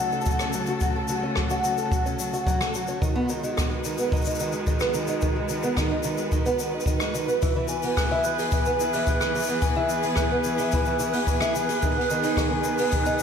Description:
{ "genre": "folktronica", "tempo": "109 BPM", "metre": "4/4", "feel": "straight", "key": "unclear", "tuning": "A4 = 439 Hz", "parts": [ { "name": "warm string quartet", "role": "sustained chords", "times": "0.0-13.2 s", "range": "C#3 to B4", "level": "-29 LUFS", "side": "equal", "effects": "none" }, { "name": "fingerpicked twelve-string acoustic guitar", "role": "arpeggios", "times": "0.0-13.2 s", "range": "D#3 to A4", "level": "-26 LUFS", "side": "right 1 dB", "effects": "analog delay" }, { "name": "jazz brush drum kit", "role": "drums", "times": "0.1-13.2 s", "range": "hi-hat, rim click, shaker", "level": "-33 LUFS", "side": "left 2 dB", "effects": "none" }, { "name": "kick drum", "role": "drums", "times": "0.3-13.0 s", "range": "none", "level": "-27 LUFS", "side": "equal", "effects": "none" }, { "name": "glockenspiel with rubber mallets", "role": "second line", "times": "7.7-13.2 s", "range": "G#5 to F#6", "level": "-28 LUFS", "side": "left 3 dB", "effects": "analog delay" } ], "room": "wet lush hall reverb, RT60 2.1 s", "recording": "dreamy mix soaked in reverb", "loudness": "-22 LUFS", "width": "side -7 dB against mid", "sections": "0.0-13.2 A section", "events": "none", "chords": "0.0 F#m; 3.0 B6; 7.4 E; 11.8 G#m", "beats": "0.26 | 0.81 1.36 1.92 2.47 | 3.02 3.57 4.12 4.67 | 5.22 5.77 6.32 6.87 | 7.42 7.97 8.52 9.07 | 9.62 10.17 10.72 11.27 | 11.82 12.37 12.93" }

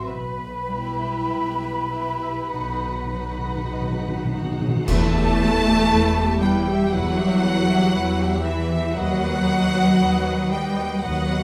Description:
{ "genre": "classical, slow romantic movement for symphony orchestra", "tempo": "49-59 BPM", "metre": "4/4", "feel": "rubato", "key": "E minor", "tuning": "A4 = 440 Hz", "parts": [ { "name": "rich studio violin section", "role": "melody", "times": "0.0-11.4 s", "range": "E5 to A5", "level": "-32 LUFS", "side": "equal", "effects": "none" }, { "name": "clear studio violin section", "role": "second line", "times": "0.0-11.4 s", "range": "F#4 to A5", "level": "-33 LUFS", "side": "equal", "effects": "none" }, { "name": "large flute ensemble", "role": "second line", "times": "0.0-4.3 s", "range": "B5", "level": "-31 LUFS", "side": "equal", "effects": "none" }, { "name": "rich studio viola section", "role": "accompaniment", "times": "0.0-11.4 s", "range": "D#4 to E5", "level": "-33 LUFS", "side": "equal", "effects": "none" }, { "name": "concert harp", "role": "arpeggios", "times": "0.0-11.4 s", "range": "A2 to E6", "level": "-35 LUFS", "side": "equal", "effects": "none" }, { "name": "rich symphonic cello section", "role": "bass", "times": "0.0-11.4 s", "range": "E3 to B4", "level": "-25 LUFS", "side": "equal", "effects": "none" }, { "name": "rich studio double bass section", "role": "bass", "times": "0.1-11.4 s", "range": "B1 to E2", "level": "-29 LUFS", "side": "equal", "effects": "none" }, { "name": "cymbal swell, clash cymbals and concert bass drum", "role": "percussion", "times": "0.1-6.9 s", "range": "none", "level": "-31 LUFS", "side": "equal", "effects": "none" }, { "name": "timpani", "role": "percussion", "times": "2.5-6.4 s", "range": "E2 to B2", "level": "-30 LUFS", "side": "equal", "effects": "none" } ], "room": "moderate recital hall reverb, RT60 1.8 s", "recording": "none", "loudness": "-22 LUFS", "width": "mono", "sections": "0.0-4.9 A section; 4.9-11.4 B section", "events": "timpani fill 2.5-4.9; band accent 4.9-5.9", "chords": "0.1 Em/B; 2.5 B; 4.9 Em; 9.0 B/D#", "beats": "| 0.07 1.30 2.52 3.72 | 4.88 5.91 6.93 7.95 | 8.97 10.01 11.03" }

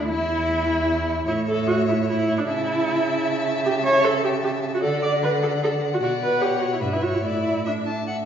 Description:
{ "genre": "quick classical-period movement for string quartet", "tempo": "151 BPM", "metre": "3/4", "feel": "rubato", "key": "A major", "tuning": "A4 = 438 Hz", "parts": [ { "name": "clear violin", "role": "melody", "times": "0.0-8.3 s", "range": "E4 to A5", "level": "-30 LUFS", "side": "left 7 dB", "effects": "none" }, { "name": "rich violin", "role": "second line", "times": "0.0-8.2 s", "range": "E4 to A5", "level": "-29 LUFS", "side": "left 1 dB", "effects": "none" }, { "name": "warm viola", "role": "accompaniment", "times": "0.0-8.1 s", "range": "D4 to D5", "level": "-22 LUFS", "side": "right 1 dB", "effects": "none" }, { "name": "rich cello", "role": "bass", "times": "0.0-8.3 s", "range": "D2 to D3", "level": "-26 LUFS", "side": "right 3 dB", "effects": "none" } ], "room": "wet recital hall reverb, RT60 1.8 s", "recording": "heard from further back in the room, nothing above 7.5 kHz", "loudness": "-20 LUFS", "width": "side -8 dB against mid", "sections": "0.0-8.3 A section", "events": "none", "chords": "0.1 N.C.; 1.3 A; 2.5 A/C#; 4.8 D; 6.0 Bm; 6.8 Em/G; 7.2 Asus4", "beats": "| 0.10 0.49 0.89 | 1.28 1.68 2.08 | 2.48 2.88 3.27 | 3.66 4.05 4.44 | 4.84 5.23 5.63 | 6.03 6.42 6.82 | 7.24 7.66 8.08" }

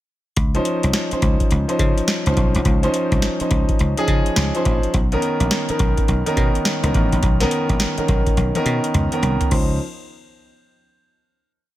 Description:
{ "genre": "R&B, new jack swing", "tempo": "105 BPM", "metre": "4/4", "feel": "swing 63% on 16ths", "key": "Db major", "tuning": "A4 = 440 Hz", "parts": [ { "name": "dry thumbed slap bass", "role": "bass", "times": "0.4-9.8 s", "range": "A1 to Db3", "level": "-20 LUFS", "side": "equal", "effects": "none" }, { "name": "booming analog drum machine", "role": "drums", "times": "0.4-9.7 s", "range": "crash cymbal, hi-hat, kick drum, snare drum, toms", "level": "-20 LUFS", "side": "equal", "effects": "none" }, { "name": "warm concert grand piano", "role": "accompaniment", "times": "0.5-9.8 s", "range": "Eb3 to C5", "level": "-21 LUFS", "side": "equal", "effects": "none" } ], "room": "little or no reverb", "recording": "none", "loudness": "-16 LUFS", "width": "side -14 dB against mid", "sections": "0.4-9.5 verse; 9.5-11.8 final chord", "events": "drum fill 8.4-9.5", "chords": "0.4 Dbmaj9; 4.9 Cbmaj9; 9.5 Dbmaj9", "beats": "| 0.37 0.94 1.51 2.08 | 2.65 3.23 3.80 4.37 | 4.94 5.51 6.08 6.66 | 7.23 7.80 8.37 8.94 | 9.51" }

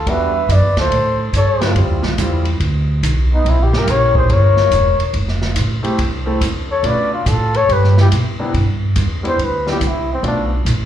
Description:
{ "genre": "jazz, small-group swing and bop", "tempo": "142 BPM", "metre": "4/4", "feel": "swing 66% on 8ths", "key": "unclear", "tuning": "A4 = 440 Hz", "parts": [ { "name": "warm flugelhorn", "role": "melody", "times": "0.0-10.4 s", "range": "C4 to E5", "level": "-17 LUFS", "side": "left 3 dB", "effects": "slapback echo" }, { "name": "breathy trumpet", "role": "second line", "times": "0.0-8.1 s", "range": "B3 to B4", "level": "-26 LUFS", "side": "right 4 dB", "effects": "slapback echo" }, { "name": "upright bass", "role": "bass", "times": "0.0-10.9 s", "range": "E1 to B2", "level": "-16 LUFS", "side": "right 1 dB", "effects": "none" }, { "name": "warm concert grand piano", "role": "accompaniment", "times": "0.1-10.5 s", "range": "C3 to A4", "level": "-22 LUFS", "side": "equal", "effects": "slapback echo" }, { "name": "open jazz drum kit", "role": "drums", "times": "0.1-10.8 s", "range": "hi-hat, kick drum, ride cymbal, snare drum", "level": "-22 LUFS", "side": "equal", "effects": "none" } ], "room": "light reverb", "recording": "live gig heard through the venue's PA, club reverb", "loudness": "-13 LUFS", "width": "side -10 dB against mid", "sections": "0.0-8.5 A section; 8.5-10.9 B section", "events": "flugelhorn solo 8.5-10.9", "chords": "0.1 Em9; 0.9 A7alt; 1.8 Dm11; 3.5 C7b9 (rootless); 5.1 Fmaj7; 6.8 Bm7b5; 7.7 G; 8.5 Cmaj7; 10.2 Bm7b5", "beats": "| 0.07 0.49 0.91 1.34 | 1.76 2.18 2.61 3.03 | 3.45 3.88 4.30 4.72 | 5.15 5.57 5.99 6.42 | 6.84 7.26 7.69 8.11 | 8.54 8.96 9.38 9.81 | 10.23 10.66" }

